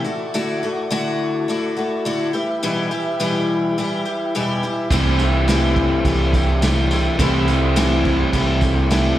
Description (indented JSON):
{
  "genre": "folk rock and heartland rock",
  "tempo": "105 BPM",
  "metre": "4/4",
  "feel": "straight",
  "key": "unclear",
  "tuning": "A4 = 444 Hz",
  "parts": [
    { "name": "picked twelve-string acoustic guitar", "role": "accompaniment", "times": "0.0-9.2 s", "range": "E2 to G4", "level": "-20 LUFS", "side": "left 2 dB", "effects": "none" },
    { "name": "mellow tonewheel organ", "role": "sustained chords", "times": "0.0-9.2 s", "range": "E4 to E5", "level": "-28 LUFS", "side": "right 1 dB", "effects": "slow rotary speaker" },
    { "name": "crunchy overdriven guitar", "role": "riff", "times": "4.9-9.2 s", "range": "C3 to E4", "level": "-22 LUFS", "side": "right 1 dB", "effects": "spring reverb" },
    { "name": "upright bass", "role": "bass", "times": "4.9-9.1 s", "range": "C2", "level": "-20 LUFS", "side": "right 1 dB", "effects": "none" },
    { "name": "vintage drum kit", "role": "drums", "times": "4.9-9.0 s", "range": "crash cymbal, kick drum, snare drum", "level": "-22 LUFS", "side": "right 1 dB", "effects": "none" },
    { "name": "tambourine", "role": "percussion", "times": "4.9-9.0 s", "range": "none", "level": "-37 LUFS", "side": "right 3 dB", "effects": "none" }
  ],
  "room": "small room ambience",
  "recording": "live gig heard through the venue's PA, club reverb",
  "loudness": "-17 LUFS",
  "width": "side -13 dB against mid",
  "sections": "0.0-9.2 A section",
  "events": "none",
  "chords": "0.0 Dadd9; 2.3 Em; 4.9 C6"
}